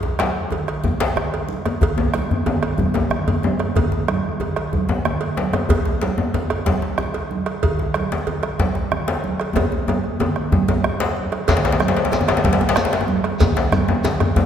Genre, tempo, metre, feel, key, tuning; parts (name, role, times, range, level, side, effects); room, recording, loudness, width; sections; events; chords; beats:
west african traditional, West African drum ensemble; 124 BPM (dotted quarters); 12/8; straight
bombo; percussion; 0.0-14.5 s; -24 LUFS; right 1 dB
congas; percussion; 0.0-14.5 s; -25 LUFS; right 4 dB
djembe; percussion; 0.0-14.5 s; -27 LUFS; left 2 dB
cowbell; percussion; 0.2-14.4 s; -28 LUFS; right 5 dB
djembe; percussion; 0.2-14.5 s; -21 LUFS; left 3 dB
shekere; percussion; 11.5-14.2 s; -33 LUFS; right 1 dB
wet concert hall reverb, RT60 1.9 s; recorded in a church or concert hall; -18 LUFS; side -9 dB against mid
0.0-11.5 A section; 11.5-14.5 B section
drum fill 9.6-11.5
0.36 0.85 1.33 | 1.82 2.30 2.79 3.27 | 3.76 4.24 4.73 5.21 | 5.70 6.18 6.66 7.14 | 7.63 8.11 8.59 9.08 | 9.56 10.04 10.52 11.00 | 11.48 11.96 12.44 12.92 | 13.40 13.88 14.36